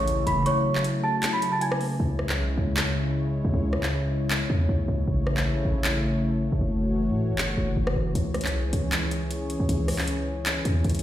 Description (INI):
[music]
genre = hip hop, trap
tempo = 156 BPM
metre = 4/4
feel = half-time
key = C# minor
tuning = A4 = 440 Hz
[part]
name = worn celesta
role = melody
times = 0.0-2.0 s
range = C#5 to B6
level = -26 LUFS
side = right 2 dB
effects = digital delay
[part]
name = warm analog pad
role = sustained chords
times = 0.0-11.0 s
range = C#3 to C#5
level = -27 LUFS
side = left 1 dB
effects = chorus
[part]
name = hard-hitting 808-style bass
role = bass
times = 0.0-11.0 s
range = F#1 to A2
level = -26 LUFS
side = equal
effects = none
[part]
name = trap drum kit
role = drums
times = 0.1-11.0 s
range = handclaps, hi-hat, rim click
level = -30 LUFS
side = equal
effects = none
[sound]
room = digital ambience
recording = played on a big sound system in a bare room, large studio reverb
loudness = -23 LUFS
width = side -12 dB against mid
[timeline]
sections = 0.0-2.0 A section; 2.0-11.0 B section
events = kick muted 0.5-2.0; hi-hats muted 2.0-8.2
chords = 0.5 F#m7; 2.0 C#m; 5.1 A; 6.6 F#m7; 8.2 C#m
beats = 0.07 | 0.46 0.84 1.23 1.61 | 2.00 2.38 2.77 3.15 | 3.54 3.92 4.31 4.69 | 5.08 5.46 5.84 6.23 | 6.61 7.00 7.38 7.77 | 8.15 8.54 8.92 9.31 | 9.69 10.07 10.46 10.84